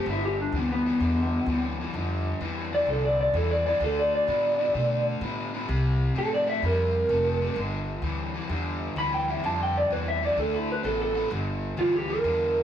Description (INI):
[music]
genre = electric blues shuffle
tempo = 128 BPM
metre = 4/4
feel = swing 68% on 8ths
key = G mixolydian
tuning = A4 = 440 Hz
[part]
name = electric guitar through a small old amp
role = melody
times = 0.0-12.6 s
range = B3 to B5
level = -25 LUFS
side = equal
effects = spring reverb
[part]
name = raw garage guitar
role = riff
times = 0.0-12.6 s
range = G2 to B3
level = -32 LUFS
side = left 1 dB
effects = overdrive
[part]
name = upright bass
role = bass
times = 0.1-12.6 s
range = F1 to B2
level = -30 LUFS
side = equal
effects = none
[sound]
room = light reverb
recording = rough rehearsal-room recording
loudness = -24 LUFS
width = side -10 dB against mid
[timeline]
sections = 0.0-11.3 A section; 11.3-12.6 A section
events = none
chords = 0.1 G; 3.8 D5; 5.7 C5; 7.6 G5; 10.4 D5; 11.3 G5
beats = | 0.06 0.53 1.00 1.47 | 1.94 2.41 2.88 3.34 | 3.81 4.28 4.75 5.22 | 5.69 6.15 6.62 7.09 | 7.56 8.03 8.49 8.96 | 9.43 9.90 10.37 10.84 | 11.30 11.77 12.24